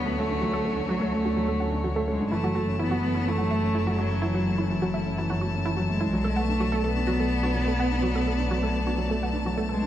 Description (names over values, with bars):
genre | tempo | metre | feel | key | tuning
electronica | 126 BPM | 4/4 | straight | F# minor | A4 = 440 Hz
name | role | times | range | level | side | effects
warm cello | melody | 0.0-9.9 s | F#3 to B3 | -28 LUFS | equal | none
clear string quartet | sustained chords | 0.0-9.9 s | D3 to A5 | -34 LUFS | left 3 dB | none
dark upright piano | riff | 0.0-9.9 s | E3 to D4 | -29 LUFS | equal | low-pass filter
warm studio double bass section | bass | 0.0-9.9 s | F#1 to D2 | -30 LUFS | equal | none
analog pluck | arpeggios | 0.1-9.8 s | E4 to F#5 | -34 LUFS | right 3 dB | chorus, cassette tape, tape echo
room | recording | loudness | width
light reverb, studio ambience | dark, warm production | -23 LUFS | side -12 dB against mid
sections
0.0-9.9 A section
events
filter sweep on synth arpeggio sound 0.0-9.9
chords
0.0 Dmaj7; 2.3 F#m7; 6.1 Bm7